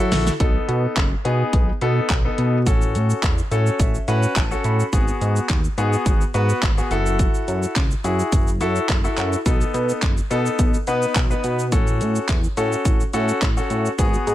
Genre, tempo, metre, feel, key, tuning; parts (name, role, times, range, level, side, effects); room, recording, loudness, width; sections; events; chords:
dance-pop; 106 BPM; 4/4; straight; A4 = 440 Hz
clear concert grand piano; accompaniment; 0.0-14.3 s; B3 to B5; -24 LUFS; left 2 dB; sidechain pumping
chorused synth bass; bass; 0.0-14.3 s; F#1 to F#3; -21 LUFS; equal; sidechain pumping
pop drum kit; drums; 0.1-14.3 s; handclaps, hi-hat, kick drum, shaker, snare drum; -20 LUFS; equal
little or no reverb; -18 LUFS; side -14 dB against mid
0.4-14.3 A section
drum fill 0.0-0.4; grand piano fill 3.2-4.9
0.4 B7; 2.7 A6; 4.9 G#m7; 6.9 F#m7; 9.5 B7; 11.7 A6